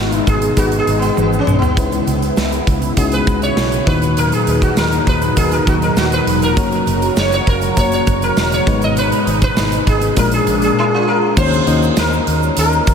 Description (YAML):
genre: 1980s-style pop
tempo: 100 BPM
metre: 4/4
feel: straight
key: C# dorian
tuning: A4 = 440 Hz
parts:
  - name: sitar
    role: melody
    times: 0.0-12.9 s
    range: B3 to D#5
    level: -18 LUFS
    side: right 1 dB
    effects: ping-pong delay
  - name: FM electric piano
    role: accompaniment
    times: 0.0-12.9 s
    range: G#2 to Eb5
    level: -20 LUFS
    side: left 5 dB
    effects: chorus
  - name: phased analog pad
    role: sustained chords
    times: 0.0-11.4 s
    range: A#2 to F#4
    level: -22 LUFS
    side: equal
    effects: phaser, chorus
  - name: vintage muted fingered electric bass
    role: bass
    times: 0.0-12.9 s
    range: E1 to D#2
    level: -20 LUFS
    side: equal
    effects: none
  - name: big rock drum kit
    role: drums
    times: 0.1-12.9 s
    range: crash cymbal, hi-hat, kick drum, snare drum, tambourine, toms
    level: -18 LUFS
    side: right 1 dB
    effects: none
  - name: egg shaker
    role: percussion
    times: 0.1-12.9 s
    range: none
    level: -36 LUFS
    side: right 14 dB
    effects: none
room: moderate huge ambient reverb, RT60 8.9 s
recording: dreamy mix soaked in reverb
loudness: -12 LUFS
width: side -7 dB against mid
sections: 0.0-11.4 A section; 11.4-12.9 B section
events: sitar solo 0.0-11.4; drum fill 1.2-1.8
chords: 0.0 G#m; 1.8 C#m7; 3.9 Bmaj7/D#; 6.6 F#; 8.7 G#m; 10.2 A#7; 11.4 Ebm7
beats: 0.57 1.17 | 1.77 2.37 2.97 3.57 | 4.17 4.77 5.37 5.97 | 6.57 7.17 7.77 8.37 | 8.97 9.57 10.17 10.77 | 11.37 11.97 12.57